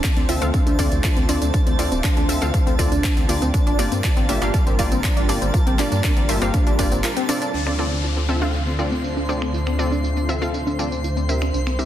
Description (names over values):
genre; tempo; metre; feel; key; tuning
progressive house; 120 BPM; 4/4; straight; D minor; A4 = 436 Hz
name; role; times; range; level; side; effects
lush unison pad; sustained chords; 0.0-11.9 s; G3 to C5; -29 LUFS; left 1 dB; chorus, phaser, sidechain pumping
tight sequenced synth; arpeggios; 0.0-11.8 s; C4 to F4; -26 LUFS; right 1 dB; chorus, sidechain pumping, digital delay
deep house drum kit; drums; 0.0-11.9 s; crash cymbal, finger snaps, handclaps, hi-hat, tambourine; -29 LUFS; equal; sidechain pumping on hats, low-pass filter on hats, studio reverb, low-pass filter on snare, sidechain pumping on perc, low-pass filter on perc, sidechain pumping on cymbals, low-pass filter on cymbals
electronic kick drum; drums; 0.0-6.9 s; none; -19 LUFS; equal; overdrive, studio reverb
twinkling granular texture; texture; 0.0-11.9 s; A5 to C6; -34 LUFS; right 1 dB; built-in reverb, sidechain pumping
dark detuned saw bass; bass; 0.2-11.9 s; D1 to G2; -24 LUFS; equal; sidechain pumping
wide unison pluck; stabs; 0.3-11.9 s; Bb3 to F5; -26 LUFS; left 1 dB; sidechain pumping, digital delay
downlifter; sound effects; 7.5-11.5 s; none; -33 LUFS; left 4 dB; none
room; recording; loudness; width
light reverb; dense, heavily limited modern master; -18 LUFS; side -12 dB against mid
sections
0.0-7.5 A section; 7.5-11.9 B section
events
filter sweep on synth arpeggio sound 0.0-7.5, 7.5-11.9; break 7.0-7.5; filter sweep on analog synth pad 7.5-11.9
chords
0.0 Dm7; 3.5 Gm7; 7.5 Dm7